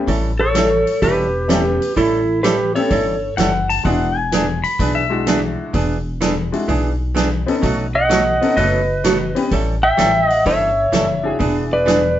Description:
country, western swing; 127 BPM; 4/4; swing 67% on 8ths; A4 = 445 Hz
clear upright piano; accompaniment; 0.0-11.8 s; G#3 to B4; -22 LUFS; left 3 dB
archtop guitar, miked and amplified; accompaniment; 0.1-12.0 s; B2 to A4; -20 LUFS; right 3 dB
upright bass; bass; 0.1-12.2 s; E1 to B1; -23 LUFS; equal
swinging big-band drum kit; drums; 0.1-12.0 s; hi-hat, kick drum, snare drum; -24 LUFS; equal
clean lap steel guitar; melody; 0.4-3.3, 8.0-12.2 s; E4 to G5; -18 LUFS; equal
mellow clarinet; second line; 0.4-3.3, 7.9-12.2 s; E4 to E5; -20 LUFS; right 2 dB
pedal steel guitar; second line; 3.4-5.4 s; E5 to B5; -20 LUFS; left 5 dB
moderate studio reverb, RT60 0.7 s; band playing live in one room, nothing above 7.7 kHz; -15 LUFS; side -12 dB against mid
0.0-12.2 A section
0.1 A9; 3.9 E9; 7.6 B9; 9.5 A7; 11.4 E9
| 0.08 0.55 1.02 1.49 | 1.96 2.44 2.91 3.38 | 3.85 4.32 4.79 5.27 | 5.74 6.21 6.68 7.16 | 7.63 8.10 8.57 9.04 | 9.51 9.99 10.46 10.93 | 11.40 11.87

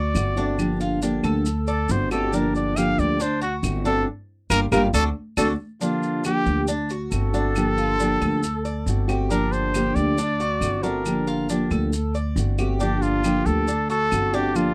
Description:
latin, Cuban son and guajira; 137 BPM; 4/4; straight; G minor; A4 = 441 Hz
warm trumpet; melody; 0.0-14.7 s; F4 to F5; -28 LUFS; equal
Cuban tres; arpeggios; 0.0-14.7 s; D4 to D5; -32 LUFS; equal
upright bass; bass; 0.0-14.7 s; G1 to D2; -28 LUFS; equal
nylon-string guitar; accompaniment; 0.1-14.7 s; D3 to G4; -27 LUFS; equal
claves; percussion; 0.2-14.7 s; -37 LUFS; equal
maracas; percussion; 0.2-14.7 s; -39 LUFS; equal
little or no reverb; dry, close 1970s-style studio recording; -23 LUFS; mono
0.0-5.8 A section; 5.8-14.7 B section
trumpet solo 0.0-5.8; band accent 4.1-5.8
0.0 D7; 0.6 Gm7; 1.5 D7; 2.3 Gm7; 3.2 D7; 4.1 Gm7; 4.9 D7; 5.8 Gm7; 6.7 D7; 7.6 Gm7; 8.4 D7; 9.3 Gm7; 10.2 D7; 11.1 Gm7; 11.9 D7; 12.8 Gm7; 13.7 D7
0.16 | 0.59 1.03 1.46 1.90 | 2.33 2.77 3.20 3.64 | 4.07 4.51 4.94 5.38 | 5.81 6.25 6.69 7.12 | 7.56 8.00 8.43 8.87 | 9.31 9.74 10.18 10.62 | 11.06 11.49 11.93 12.37 | 12.81 13.24 13.68 14.12 | 14.56

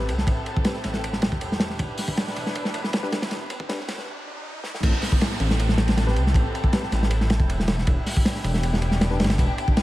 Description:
drum and bass, jungle; 158 BPM; 4/4; straight; A minor; A4 = 440 Hz
dark symphonic string section; sustained chords; 0.0-9.8 s; B3 to B4; -32 LUFS; equal
tine electric piano; stabs; 0.0-0.7, 3.0-3.8, 6.1-6.8, 9.1-9.2 s; C4 to B4; -34 LUFS; left 2 dB; low-pass filter, dub echo
dark detuned saw bass; bass; 0.0-9.5 s; E1 to C2; -24 LUFS; equal
riser and downlifter; sound effects; 1.5-7.9 s; -36 LUFS; right 2 dB
crunchy breakbeat drum kit; drums; 0.1-9.8 s; crash cymbal, hi-hat, kick drum, ride cymbal, snare drum; -23 LUFS; equal
small room ambience; vinyl crackle, high-pass filter; -21 LUFS; side -16 dB against mid
0.0-4.8 A section; 4.8-9.8 B section
build-up 0.0-4.8; filter sweep 0.0-4.8; break 4.1-4.8; drum fill 4.6; drop 4.8-9.8
0.0 Am7; 1.8 Em7; 4.8 Am7; 7.9 Em7
| 0.28 0.66 1.03 1.41 | 1.79 2.17 2.55 2.93 | 3.31 3.69 4.07 4.45 | 4.83 5.21 5.59 5.97 | 6.35 6.73 7.11 7.49 | 7.87 8.25 8.63 9.01 | 9.39 9.77

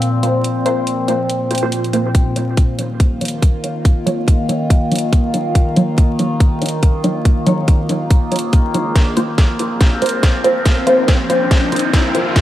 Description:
deep dubstep; 141 BPM; 4/4; swing 57% on 16ths, half-time; Eb dorian; A4 = 440 Hz
overtone-sweeping drone; sustained chords; 0.0-12.4 s; Bb2 to F4; -19 LUFS; left 1 dB; chorus, built-in reverb, phaser
garage drum kit; drums; 0.0-12.4 s; hi-hat, snare drum; -24 LUFS; equal; high-pass filter on hats, high-pass filter on snare
filtered dub chord stab; stabs; 0.2-12.3 s; Gb3 to Db5; -18 LUFS; equal; phaser, lush chorus, dub echo
dark detuned saw bass; bass; 2.1-12.4 s; Eb1 to Eb2; -31 LUFS; equal
electronic kick drum; drums; 2.1-12.4 s; -12 LUFS; equal
riser; sound effects; 9.9-12.4 s; -23 LUFS; left 1 dB
moderate lush hall reverb, RT60 1.9 s, digital ambience; vinyl crackle; -13 LUFS; side -13 dB against mid
0.0-2.1 A section; 2.1-12.4 B section
filter sweep on synth stab 0.0-2.1; build-up 2.1-12.4; drum fill 9.0-12.4; riser 9.9-12.4
0.0 Bbsus2; 2.1 Ebm7; 9.0 Bbsus2
0.02 | 0.45 0.87 1.30 1.72 | 2.15 2.58 3.00 3.43 | 3.85 4.28 4.70 5.13 | 5.55 5.98 6.41 6.83 | 7.26 7.68 8.11 8.53 | 8.96 9.38 9.81 10.23 | 10.66 11.09 11.51 11.94 | 12.36

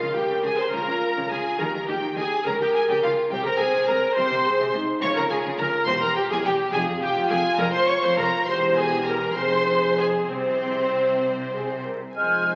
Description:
quick classical-period movement for symphony orchestra; 69 BPM (dotted quarters); 6/8; rubato; Ab major, F minor from 5.0 s; A4 = 440 Hz
rich studio violin section; melody; 0.0-12.6 s; C5 to Db6; -30 LUFS; equal
rich studio violin section; second line; 0.0-11.8 s; C4 to Db5; -33 LUFS; equal
rich studio viola section; accompaniment; 0.0-12.6 s; C4 to Db5; -28 LUFS; equal
mellow French horn section; sustained chords; 0.0-12.6 s; Ab3 to C5; -28 LUFS; equal
rich studio cello section; bass; 0.0-12.6 s; E2 to Eb3; -35 LUFS; equal
clear studio double bass section; bass; 0.1-12.6 s; E1 to Eb2; -40 LUFS; equal
mellow large flute ensemble; second line; 12.2-12.6 s; F6; -23 LUFS; equal
warm oboe; second line; 12.2-12.6 s; C5; -34 LUFS; equal
warm bassoon; accompaniment; 12.2-12.6 s; Ab3; -32 LUFS; equal
wet scoring stage reverb, RT60 1.8 s; very old 78 rpm record, vinyl crackle, nothing above 8.0 kHz; -23 LUFS; mono
0.0-12.2 A section
0.0 Bbm/Db; 1.6 Eb; 2.5 Bbm6/Db; 3.3 Abmaj9/C; 5.0 Db; 5.9 C7b13/E; 6.7 Fmadd9; 8.5 C7b13/E; 9.4 Fm; 10.3 N.C.; 11.2 Abadd9/C
0.72 | 1.59 2.46 | 3.31 4.16 | 5.02 5.87 | 6.73 7.59 | 8.47 9.36 | 10.29 11.23 | 12.16

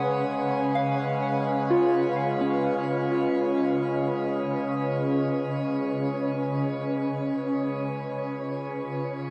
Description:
ambient; free time; A4 = 440 Hz
shimmering ambient pad; sustained chords; 0.0-9.3 s; Db3 to Cb5; -30 LUFS; equal; chorus, built-in reverb
soft synth bell; arpeggios; 0.0-7.6 s; Db4 to Eb6; -31 LUFS; equal; chorus, phaser, tape echo
overtone-sweeping drone; drone; 0.0-7.7 s; Db3 to Ab3; -35 LUFS; equal; chorus, built-in reverb
wet shimmer reverb, RT60 9.2 s; -27 LUFS; mono
0.0-7.5 A section; 7.5-9.3 B section
0.0 Abm/Db; 7.5 Db
free time

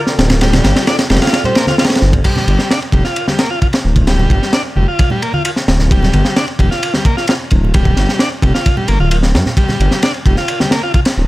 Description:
breakbeat, breaks; 131 BPM; 4/4; straight; G minor; A4 = 438 Hz
glassy wavetable pluck; melody; 0.0-2.1 s; C5; -22 LUFS; equal; chorus, small speaker sound, digital delay
dark analog pad; sustained chords; 0.0-2.2 s; F4 to D5; -26 LUFS; equal
crunchy breakbeat drum kit; drums; 0.1-11.2 s; crash cymbal, kick drum, ride cymbal, snare drum; -14 LUFS; equal
dark detuned saw bass; bass; 0.2-11.3 s; D1 to G2; -13 LUFS; equal
congas; percussion; 0.3-10.7 s; -22 LUFS; right 1 dB
combo organ; riff; 0.4-11.0 s; G3 to F4; -19 LUFS; equal; tube saturation, digital delay
small room reverb; -11 LUFS; side -18 dB against mid
0.0-2.2 A section; 2.2-11.3 B section
drop 0.0-2.2
0.0 G7sus2; 2.2 G7(no3)
| 0.41 0.87 1.33 1.79 | 2.25 2.70 3.16 3.62 | 4.08 4.54 4.99 5.45 | 5.91 6.37 6.83 7.28 | 7.74 8.20 8.66 9.12 | 9.57 10.03 10.49 10.95

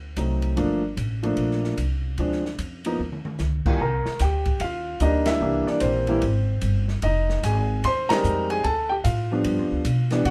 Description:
jazz piano trio; 149 BPM; 4/4; swing 64% on 8ths; G minor, C minor from 3.8 s; A4 = 441 Hz
upright bass; bass; 0.0-10.3 s; F1 to C3; -27 LUFS; equal
warm grand piano; melody; 0.2-10.3 s; C2 to C6; -26 LUFS; equal
open jazz drum kit; drums; 0.2-10.3 s; crash cymbal, hi-hat, kick drum, ride cymbal, snare drum, toms; -34 LUFS; equal
moderate small room reverb, RT60 0.5 s; -24 LUFS; mono
0.0-3.8 A section; 3.8-10.3 B section
drum fill 3.0-3.4; band accent 5.2, 8.0
0.0 D7b9; 0.6 Gm7; 2.2 Dm7b5; 3.0 Eb7(no3); 3.8 Cm7; 5.4 C7; 7.0 Fm7; 8.6 Dm; 9.5 G7
0.18 | 0.58 0.99 1.39 1.79 | 2.19 2.60 3.00 3.40 | 3.81 4.21 4.61 5.02 | 5.42 5.82 6.23 6.63 | 7.03 7.44 7.84 8.24 | 8.64 9.05 9.45 9.85 | 10.26

